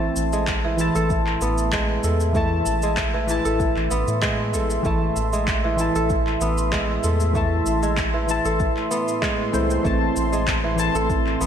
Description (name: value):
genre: organic downtempo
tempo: 96 BPM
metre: 4/4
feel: swing 53% on 16ths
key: A harmonic minor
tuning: A4 = 440 Hz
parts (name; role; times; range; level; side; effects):
- deep mellow chord stab; accompaniment; 0.0-11.5 s; E3 to A5; -26 LUFS; left 1 dB; chorus, sidechain pumping, ping-pong delay, slapback echo
- warm analog pad; sustained chords; 0.0-11.5 s; A2 to C6; -28 LUFS; right 1 dB; chorus, tremolo, sidechain pumping
- kora; arpeggios; 0.0-11.5 s; E3 to A4; -25 LUFS; right 1 dB; ping-pong delay, slapback echo
- round analog bass; bass; 0.0-11.5 s; A1 to A2; -25 LUFS; equal; none
- bronze singing bowl; texture; 0.0-11.5 s; C4 to A5; -34 LUFS; right 3 dB; none
- electronic shaker and handclaps; drums; 0.2-11.5 s; none; -29 LUFS; left 1 dB; none
- electronic kick drum; drums; 0.5-11.2 s; none; -26 LUFS; equal; none
room: moderate concert hall reverb, RT60 2.4 s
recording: big arena sound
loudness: -19 LUFS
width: side -8 dB against mid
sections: 0.0-11.5 A section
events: none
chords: 0.0 Am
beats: 0.48 1.10 1.73 | 2.35 2.98 3.60 4.23 | 4.85 5.48 6.10 6.73 | 7.35 7.98 8.60 9.23 | 9.85 10.48 11.10